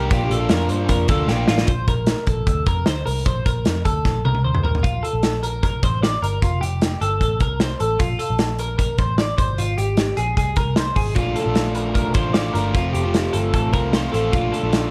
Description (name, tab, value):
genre	jangly indie pop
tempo	152 BPM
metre	4/4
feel	straight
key	Bb major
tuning	A4 = 441 Hz
part	overdriven electric guitar	accompaniment	0.0-1.7, 11.2-14.9 s	F2 to G4	-26 LUFS	equal	none
part	twelve-string electric guitar	arpeggios	0.0-14.9 s	F4 to D5	-27 LUFS	equal	lush chorus
part	vintage muted picked electric bass	bass	0.0-14.9 s	F1 to G2	-26 LUFS	equal	none
part	loose indie drum kit	drums	0.1-14.8 s	hi-hat, kick drum, snare drum, toms	-23 LUFS	equal	none
room	light reverb, small room ambience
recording	dark, warm production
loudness	-20 LUFS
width	mono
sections	0.0-1.7 A section; 1.7-4.8 B section; 4.8-14.9 C section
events	drum fill 1.3-1.7, 4.0-4.8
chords	0.1 Bb; 4.8 Bbmaj7; 6.4 F; 8.0 Bbmaj7; 9.4 Ab; 11.2 Bbmaj7; 12.7 F; 14.3 Bbmaj7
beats	| 0.12 0.51 0.90 1.29 | 1.69 2.08 2.47 2.87 | 3.26 3.65 4.05 4.45 | 4.84 5.23 5.63 6.02 | 6.42 6.82 7.21 7.61 | 8.00 8.40 8.79 9.19 | 9.58 9.98 10.38 10.77 | 11.17 11.56 11.96 12.35 | 12.75 13.14 13.54 13.94 | 14.33 14.73